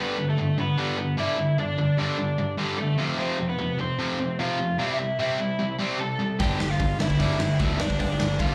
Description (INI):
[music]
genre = punk rock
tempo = 150 BPM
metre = 4/4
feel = straight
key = G mixolydian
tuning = A4 = 437 Hz
[part]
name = crunchy overdriven guitar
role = melody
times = 0.0-8.5 s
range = A3 to A5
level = -32 LUFS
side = equal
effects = slapback echo
[part]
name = distorted electric guitar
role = riff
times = 0.0-8.5 s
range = F2 to C4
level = -33 LUFS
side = equal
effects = overdrive, slapback echo
[part]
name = distorted electric guitar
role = riff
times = 0.0-8.5 s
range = F2 to C4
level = -29 LUFS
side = equal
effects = overdrive, slapback echo
[part]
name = growling picked electric bass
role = bass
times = 6.4-8.5 s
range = G1 to D2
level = -30 LUFS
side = equal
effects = overdrive
[part]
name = raw garage drum kit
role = drums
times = 6.4-8.5 s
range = hi-hat, kick drum, snare drum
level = -29 LUFS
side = equal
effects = none
[sound]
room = moderate club reverb, RT60 0.6 s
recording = live gig heard through the venue's PA, club reverb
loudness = -25 LUFS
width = mono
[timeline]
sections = 0.0-8.5 A section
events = none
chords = 0.0 G; 3.0 F; 4.8 C; 6.4 G5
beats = 0.38 0.78 1.18 | 1.58 1.98 2.38 2.78 | 3.18 3.58 3.99 4.39 | 4.79 5.19 5.59 5.99 | 6.39 6.79 7.20 7.60 | 8.00 8.40